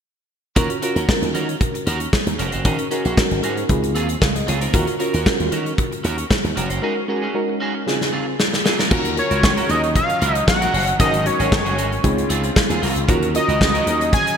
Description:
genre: early-eighties boogie funk.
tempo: 115 BPM.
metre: 4/4.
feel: straight.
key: Eb dorian.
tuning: A4 = 440 Hz.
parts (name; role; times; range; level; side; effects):
mellow FM electric piano; accompaniment; 0.6-14.0 s; Db3 to F5; -25 LUFS; equal; chorus.
electric guitar at the edge of break-up; riff; 0.6-14.3 s; C4 to C5; -26 LUFS; right 4 dB; analog chorus.
slap bass with an envelope filter; bass; 0.6-14.2 s; F1 to Eb3; -23 LUFS; equal; none.
modern studio drum kit; drums; 0.6-14.4 s; crash cymbal, hi-hat, kick drum, snare drum; -20 LUFS; equal; gated reverb.
rich studio string section; sustained chords; 8.9-14.4 s; Db3 to F4; -29 LUFS; left 2 dB; none.
fat analog lead; melody; 9.2-14.4 s; Db5 to Ab5; -20 LUFS; equal; chorus.
room: moderate lush hall reverb, RT60 2.4 s.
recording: bright 1980s-style digital production.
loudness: -17 LUFS.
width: side -7 dB against mid.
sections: 0.6-8.9 A section; 8.9-14.4 B section.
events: drum fill 7.9-8.9.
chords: 0.6 Ebm7; 2.6 Ab7sus4; 3.7 Dbmaj7; 4.7 Ebm7; 6.8 Ab7sus4; 7.9 Dbmaj7; 8.9 Ebm7; 11.0 Ab7sus4; 12.0 Dbmaj7; 13.1 Ebm7.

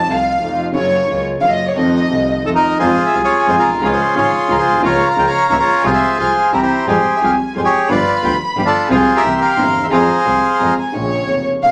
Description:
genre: tango.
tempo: 177 BPM.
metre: 3/4.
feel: rubato.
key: F harmonic minor.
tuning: A4 = 439 Hz.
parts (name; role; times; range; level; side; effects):
warm chamber violin section; second line; 0.0-11.7 s; Db5 to C6; -22 LUFS; equal; none.
warm upright piano; accompaniment; 0.0-11.7 s; F1 to Ab4; -23 LUFS; equal; none.
dark studio string section; stabs; 0.0-11.7 s; F3 to F4; -28 LUFS; equal; none.
bright double bass; bass; 0.0-11.7 s; F1 to F2; -27 LUFS; equal; none.
bandoneon; melody; 2.5-10.7 s; Db4 to G5; -16 LUFS; equal; none.
room: wet large studio reverb, RT60 0.9 s.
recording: none.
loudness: -15 LUFS.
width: mono.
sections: 0.0-2.8 A section; 2.8-10.9 B section.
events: violin section solo 0.0-2.8.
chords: 0.0 F7; 0.7 Gbmaj7; 1.8 F7; 2.8 Fm; 3.8 Db; 4.8 Bbm/Db; 5.8 Fm/C; 6.5 C; 6.9 Fmadd9; 7.9 G7; 8.9 Fm/C; 9.2 C7; 9.9 Fm; 10.9 Bbmadd9.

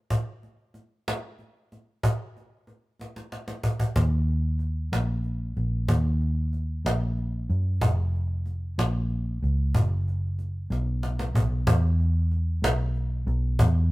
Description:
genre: six-eight pop ballad.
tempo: 62 BPM (dotted quarters).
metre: 6/8.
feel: straight.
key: Eb minor.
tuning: A4 = 440 Hz.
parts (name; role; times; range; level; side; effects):
cajon; drums; 0.1-13.7 s; none; -26 LUFS; equal; none.
vintage muted fingered electric bass; bass; 4.0-13.9 s; F1 to Gb2; -24 LUFS; equal; none.
room: light reverb.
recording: rough rehearsal-room recording.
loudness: -24 LUFS.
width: side -20 dB against mid.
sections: 0.0-11.7 A section; 11.7-13.9 B section.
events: drum fill 3.0-4.0, 10.7-11.7.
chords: none.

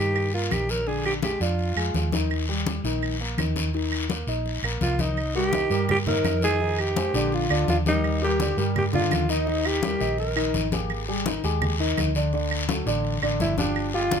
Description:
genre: Afro-Cuban jazz.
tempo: 168 BPM.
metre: 4/4.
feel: straight.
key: Eb major, C minor from 5.2 s.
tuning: A4 = 444 Hz.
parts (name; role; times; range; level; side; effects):
growling alto saxophone; melody; 0.0-2.1, 4.8-10.7, 13.4-14.2 s; D4 to Bb4; -26 LUFS; right 1 dB; none.
dark grand piano; accompaniment; 0.0-14.2 s; D3 to Eb5; -28 LUFS; left 2 dB; none.
hollow-body short-scale fingered electric bass; bass; 0.0-14.2 s; G1 to G2; -27 LUFS; right 1 dB; none.
claves; percussion; 0.2-13.9 s; none; -31 LUFS; right 8 dB; none.
congas; percussion; 0.2-14.2 s; none; -30 LUFS; left 3 dB; none.
guiro; percussion; 0.2-14.2 s; none; -33 LUFS; left 5 dB; none.
room: little or no reverb.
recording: close, detailed microphones.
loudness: -22 LUFS.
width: side -7 dB against mid.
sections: 0.0-5.2 A section; 5.2-14.2 B section.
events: none.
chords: 0.0 Cm7 (rootless); 0.9 Bb7; 2.3 Eb6; 5.2 Cm7; 6.6 Fm7; 7.3 Bb; 8.0 Ebmaj7; 9.5 Eb; 10.9 Ab5; 12.3 D.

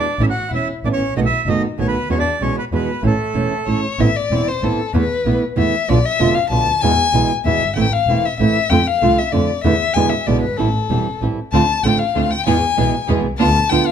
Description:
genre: tango.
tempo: 191 BPM.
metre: 3/4.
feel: rubato.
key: A major, A minor from 4.0 s.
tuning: A4 = 436 Hz.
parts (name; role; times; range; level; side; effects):
bandoneon; melody; 0.0-3.8 s; A4 to F#5; -22 LUFS; right 4 dB; none.
warm violin; second line; 0.0-13.9 s; A3 to A5; -19 LUFS; left 8 dB; none.
nylon-string guitar; accompaniment; 0.0-13.9 s; B2 to F#4; -19 LUFS; right 6 dB; none.
clear double bass; bass; 0.2-13.8 s; E1 to F2; -20 LUFS; equal; none.
clear studio string section; stabs; 11.5-13.8 s; B3 to G#4; -26 LUFS; right 1 dB; none.
room: light reverb.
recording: close, detailed microphones.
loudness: -15 LUFS.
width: side -8 dB against mid.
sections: 0.0-4.0 A section; 4.0-13.9 B section.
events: violin solo 4.0-13.9.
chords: 0.2 Aadd9; 1.2 B7; 2.1 Eadd9; 3.0 A; 4.0 Amadd9; 4.9 Esus4; 5.9 Bdim; 6.8 E; 7.8 Am; 8.7 F6; 9.6 E7sus4; 10.0 E7; 10.6 Am7; 11.5 Dm7; 12.5 E; 13.4 Bdim/D.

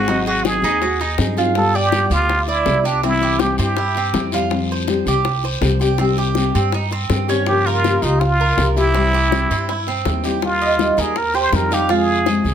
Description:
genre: latin, Cuban son and guajira.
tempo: 162 BPM.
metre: 4/4.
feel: straight.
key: unclear.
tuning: A4 = 441 Hz.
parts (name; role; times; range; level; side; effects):
trumpet with plunger mute; melody; 0.0-4.3, 7.5-12.5 s; D4 to C5; -19 LUFS; right 2 dB; plate reverb.
nylon-string guitar; accompaniment; 0.0-12.5 s; C3 to Ab4; -21 LUFS; left 4 dB; none.
Cuban tres; arpeggios; 0.0-12.5 s; C4 to F5; -22 LUFS; right 6 dB; none.
upright bass; bass; 0.0-12.5 s; Ab1 to G2; -21 LUFS; equal; none.
bongos; percussion; 0.1-12.5 s; none; -25 LUFS; left 8 dB; none.
guiro; percussion; 0.1-12.5 s; none; -31 LUFS; left 6 dB; none.
room: moderate studio reverb, RT60 0.5 s.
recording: none.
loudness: -15 LUFS.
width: side -8 dB against mid.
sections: 0.0-10.4 A section; 10.4-12.5 B section.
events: none.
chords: 0.1 Ab7; 1.6 G7; 3.0 C; 4.5 Fsus2; 6.0 Cm; 7.5 Gm7b5; 8.9 C; 10.4 Ebadd9; 11.9 Fm.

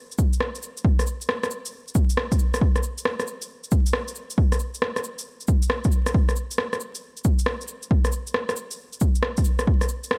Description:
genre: future garage.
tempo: 136 BPM.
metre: 4/4.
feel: swing 66% on 16ths.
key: none.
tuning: none.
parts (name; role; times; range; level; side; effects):
electronic shaker, cabasa and rim click; drums; 0.1-10.2 s; none; -29 LUFS; equal; none.
electronic kick drum; drums; 0.2-9.8 s; none; -23 LUFS; equal; none.
room: little or no reverb.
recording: vinyl crackle.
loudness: -24 LUFS.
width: mono.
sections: 0.0-10.2 A section.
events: none.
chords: none.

